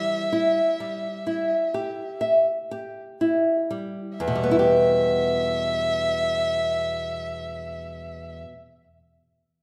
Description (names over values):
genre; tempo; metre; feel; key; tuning
romantic duo for violin and classical guitar; 32 BPM; 4/4; rubato; E minor; A4 = 440 Hz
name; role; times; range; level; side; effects
warm violin; melody; 0.0-8.4 s; E5; -29 LUFS; equal; none
nylon-string guitar; accompaniment; 0.0-8.8 s; E2 to E5; -26 LUFS; equal; none
room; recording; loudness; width
moderate scoring stage reverb, RT60 1.8 s; none; -24 LUFS; mono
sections
0.0-4.2 A section; 4.2-9.6 B section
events
slowing down 0.0-4.2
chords
0.0 Em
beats
0.32 2.21 | 4.18 6.04 7.90